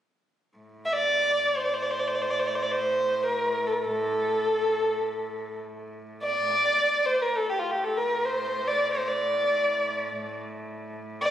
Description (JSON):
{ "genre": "Arabic maqam ensemble", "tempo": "free time", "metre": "none", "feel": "none", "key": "A maqam bayati", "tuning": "A4 = 436 Hz", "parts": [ { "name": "rich cello", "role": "drone", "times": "0.6-11.3 s", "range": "A2", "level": "-38 LUFS", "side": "right 1 dB", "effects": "none" }, { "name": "dark violin", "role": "melody", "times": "0.9-11.3 s", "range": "F4 to E5", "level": "-24 LUFS", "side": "equal", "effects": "none" } ], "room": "wet recital hall reverb, RT60 1.8 s", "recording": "recorded on a phone in the room, studio reverb, compression", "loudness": "-24 LUFS", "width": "side -11 dB against mid", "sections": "0.6-11.3 A section", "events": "none", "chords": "none" }